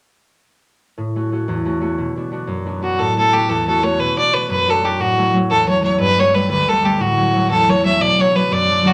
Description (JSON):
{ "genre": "celtic folk", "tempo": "120 BPM (dotted quarters)", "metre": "6/8", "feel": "straight", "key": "A mixolydian", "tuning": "A4 = 442 Hz", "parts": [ { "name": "concert harp", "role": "accompaniment", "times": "1.0-8.9 s", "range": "D2 to F#4", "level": "-21 LUFS", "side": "equal", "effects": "none" }, { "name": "clear fiddle", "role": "melody", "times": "2.8-8.9 s", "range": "F#4 to E5", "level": "-18 LUFS", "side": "equal", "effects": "none" } ], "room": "wet studio reverb, RT60 0.6 s", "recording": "none", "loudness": "-17 LUFS", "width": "mono", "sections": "1.0-3.0 A section; 3.0-8.9 B section", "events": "none", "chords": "1.0 A6; 2.0 Bm; 3.0 A6; 4.0 Bm; 5.0 A6; 6.0 Gadd9; 7.0 A6; 8.0 Bm", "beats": "| 0.97 1.48 | 1.98 2.48 | 2.98 3.49 | 3.99 4.49 | 4.99 5.49 | 6.00 6.50 | 7.00 7.50 | 8.00 8.51" }